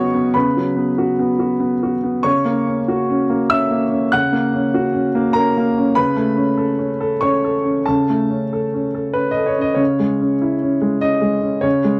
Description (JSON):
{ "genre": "neoclassical minimalist piano", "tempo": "96 BPM", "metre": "3/4", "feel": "rubato", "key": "C# minor", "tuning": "A4 = 441 Hz", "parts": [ { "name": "warm grand piano", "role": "solo", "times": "0.0-12.0 s", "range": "C#3 to F#6", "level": "-18 LUFS", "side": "equal", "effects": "none" } ], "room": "light reverb", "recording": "dry, close 1970s-style studio recording", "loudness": "-18 LUFS", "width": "mono", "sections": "0.0-9.8 A section; 9.8-12.0 B section", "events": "none", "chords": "0.0 B/C#; 2.3 F#/C#; 6.0 A/C#; 9.8 C#m", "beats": "| 0.34 0.98 1.61 | 2.26 2.89 3.52 | 4.13 4.74 5.36 | 5.97 6.58 7.20 | 7.84 8.51 9.15 | 9.80 10.41 11.03 | 11.65" }